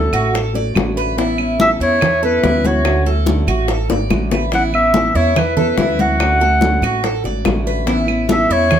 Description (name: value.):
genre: latin, Cuban son and guajira.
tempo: 143 BPM.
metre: 4/4.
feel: straight.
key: A major.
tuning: A4 = 440 Hz.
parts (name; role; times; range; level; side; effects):
mellow clarinet; melody; 0.0-8.8 s; A4 to F#5; -17 LUFS; equal; plate reverb.
nylon-string guitar; accompaniment; 0.0-8.7 s; D3 to F#4; -21 LUFS; left 2 dB; none.
Cuban tres; arpeggios; 0.0-8.8 s; E4 to D5; -21 LUFS; right 3 dB; none.
upright bass; bass; 0.0-8.8 s; G#1 to E2; -20 LUFS; right 1 dB; none.
bongos; percussion; 0.1-8.8 s; none; -23 LUFS; left 5 dB; none.
claves; percussion; 0.1-8.8 s; none; -28 LUFS; right 6 dB; none.
congas; percussion; 0.1-8.8 s; none; -22 LUFS; equal; none.
room: moderate studio reverb, RT60 0.7 s.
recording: none.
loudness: -13 LUFS.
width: side -9 dB against mid.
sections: 0.0-8.8 A section.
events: drum fill 3.9-4.5.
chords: 0.0 Dmaj7; 1.2 Aadd9; 2.9 Dmaj7; 4.5 Aadd9; 6.2 Dmaj7; 7.9 Aadd9.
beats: 0.34 0.76 | 1.18 1.59 2.01 2.43 | 2.85 3.27 3.69 4.11 | 4.53 4.94 5.36 5.78 | 6.20 6.62 7.04 7.46 | 7.88 8.29 8.71.